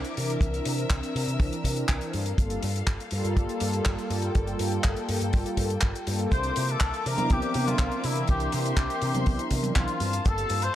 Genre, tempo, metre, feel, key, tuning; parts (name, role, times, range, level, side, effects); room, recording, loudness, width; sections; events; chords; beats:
nu-disco, nu disco; 122 BPM; 4/4; straight; C mixolydian; A4 = 440 Hz
warm analog pad; accompaniment; 0.0-10.4 s; D3 to Bb4; -31 LUFS; equal; chorus, analog delay
rich studio string section; sustained chords; 0.0-10.8 s; Bb3 to E6; -37 LUFS; left 4 dB; sidechain pumping
damped 70s drum kit; drums; 0.0-10.7 s; handclaps, hi-hat; -33 LUFS; left 1 dB
picked electric bass with an envelope filter; bass; 0.2-10.7 s; G1 to C3; -30 LUFS; equal
kick drum; drums; 0.4-10.4 s; -25 LUFS; equal
muted trumpet section; melody; 6.3-10.8 s; E4 to C5; -30 LUFS; left 2 dB; analog delay
maracas and congas; percussion; 6.3-10.7 s; -34 LUFS; right 3 dB
light reverb, studio ambience; dry, gritty hardware recording, transformer saturation; -24 LUFS; side -12 dB against mid
0.0-10.8 A section
0.0 C9; 2.1 Gm9; 6.3 C9; 10.0 Gm9
| 0.42 0.91 1.40 1.89 | 2.38 2.88 3.37 3.86 | 4.35 4.84 5.34 5.83 | 6.32 6.81 7.30 7.79 | 8.29 8.78 9.27 9.76 | 10.25 10.75